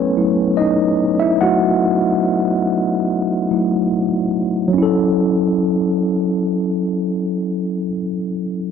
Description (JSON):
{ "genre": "soul", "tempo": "72 BPM", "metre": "4/4", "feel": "straight", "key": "F# dorian", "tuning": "A4 = 437 Hz", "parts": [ { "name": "mellow tine electric piano", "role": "solo", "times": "0.0-8.7 s", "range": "F#3 to F#5", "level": "-15 LUFS", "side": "equal", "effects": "medium stereo tremolo" } ], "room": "light reverb", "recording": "none", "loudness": "-15 LUFS", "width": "side -7 dB against mid", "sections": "0.0-4.8 A section; 4.8-8.1 B section", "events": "tine electric piano solo 0.0-4.8", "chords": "0.0 F#m7", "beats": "0.58 | 1.42 2.25 3.08 3.92 | 4.75 5.58 6.42 7.25" }